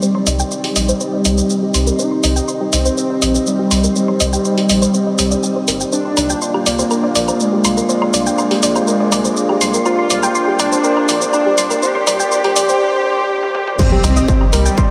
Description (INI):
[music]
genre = melodic techno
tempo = 122 BPM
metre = 4/4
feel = straight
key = C minor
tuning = A4 = 441 Hz
[part]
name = unison lead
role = melody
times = 0.0-14.9 s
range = G3 to G4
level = -20 LUFS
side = equal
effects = subtle chorus, sidechain pumping, delay
[part]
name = dark analog pad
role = sustained chords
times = 0.0-14.9 s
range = Bb3 to F5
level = -23 LUFS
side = equal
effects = chorus, sidechain pumping
[part]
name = soft round pluck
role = arpeggios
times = 0.0-14.9 s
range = G4 to Eb6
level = -21 LUFS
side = equal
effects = chorus, sidechain pumping, analog delay
[part]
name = techno drum kit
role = drums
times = 0.0-14.9 s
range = congas, crash cymbal, hi-hat, shaker, toms, woodblock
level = -22 LUFS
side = equal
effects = high-pass filter on perc, high-pass filter on hats, high-pass filter on toms, high-pass filter on cymbals, high-pass filter on room
[part]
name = round analog bass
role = bass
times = 0.3-14.7 s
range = G1 to C2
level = -22 LUFS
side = equal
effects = sidechain pumping
[part]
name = electronic kick drum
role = drums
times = 13.8-14.9 s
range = none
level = -17 LUFS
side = equal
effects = distortion
[part]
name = impact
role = sound effects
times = 13.8-14.9 s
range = none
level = -24 LUFS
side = equal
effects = none
[sound]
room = wet huge ambient reverb, RT60 8.7 s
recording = dreamy mix soaked in reverb, high-pass filter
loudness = -15 LUFS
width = mono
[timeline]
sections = 0.0-13.8 A section; 13.8-14.9 B section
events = build-up 0.0-13.8; filter sweep on synth arpeggio sound 0.0-13.8; filter sweep on analog synth lead 0.0-13.8; drum fill 13.4-13.8; drop 13.8-14.9; impact 13.8-14.9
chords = 0.0 Cmadd9; 5.9 Bb; 13.8 Cmadd9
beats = | 0.02 0.52 1.01 1.50 | 1.99 2.48 2.97 3.47 | 3.96 4.45 4.94 5.43 | 5.92 6.42 6.91 7.40 | 7.89 8.38 8.88 9.37 | 9.86 10.35 10.84 11.34 | 11.83 12.32 12.81 13.30 | 13.79 14.29 14.78